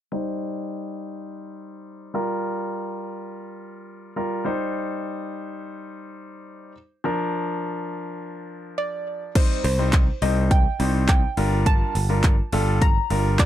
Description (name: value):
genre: dance-pop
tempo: 104 BPM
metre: 4/4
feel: straight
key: C dorian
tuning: A4 = 440 Hz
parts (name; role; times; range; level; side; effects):
- warm concert grand piano; accompaniment; 0.1-13.5 s; F3 to C5; -28 LUFS; left 1 dB; sidechain pumping, low-pass filter
- soft round pluck; melody; 8.8-13.5 s; C5 to Bb5; -28 LUFS; right 1 dB; chorus, tape echo
- pop drum kit; drums; 9.4-13.5 s; crash cymbal, handclaps, hi-hat, kick drum; -20 LUFS; equal; overdrive
- modern bright picked electric bass; bass; 9.6-13.5 s; G1 to C2; -22 LUFS; equal; sidechain pumping
room: light reverb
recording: dark, warm production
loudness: -21 LUFS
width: side -12 dB against mid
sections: 0.1-9.4 A section; 9.4-13.5 B section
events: filter sweep on grand piano 0.1-9.4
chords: 0.1 Cm; 2.1 Gm7; 4.5 Cm; 7.0 Bb; 9.4 Cm; 11.4 Gm7